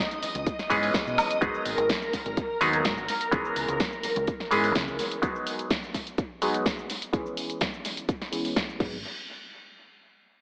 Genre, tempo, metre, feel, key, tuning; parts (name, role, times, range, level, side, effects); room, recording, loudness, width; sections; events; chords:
filtered disco house; 126 BPM; 4/4; straight; G# minor; A4 = 440 Hz
clav; accompaniment; 0.0-9.0 s; E3 to G#4; -31 LUFS; equal; phaser, sidechain pumping, low-pass filter
phased string machine; sustained chords; 0.0-5.2 s; A#4 to D#6; -33 LUFS; equal; ensemble chorus, phaser, vintage 12-bit sampler grit, sidechain pumping, low-pass filter
house drum kit; drums; 0.1-8.9 s; cabasa, crash cymbal, hi-hat, snare drum, woodblock; -34 LUFS; equal; sidechain pumping on hats, sidechain pumping on perc, sidechain pumping on cymbals, dub echo
deep dub fingered electric bass; bass; 0.2-5.0, 8.8-9.0 s; G#1 to C#3; -37 LUFS; equal; sidechain pumping, low-pass filter
electronic kick drum; drums; 0.5-8.9 s; -33 LUFS; equal
moderate plate reverb, RT60 2.1 s; echo-heavy mix, AM radio sound; -28 LUFS; mono
0.0-1.4 A section; 1.4-9.0 B section; 9.0-10.4 C section
drop 0.0-1.4; filter sweep 1.4-9.0
0.0 C#m7; 1.4 G#m7; 3.1 C#m7; 5.2 G#m7; 6.9 C#m7; 8.8 G#m7; 9.0 N.C.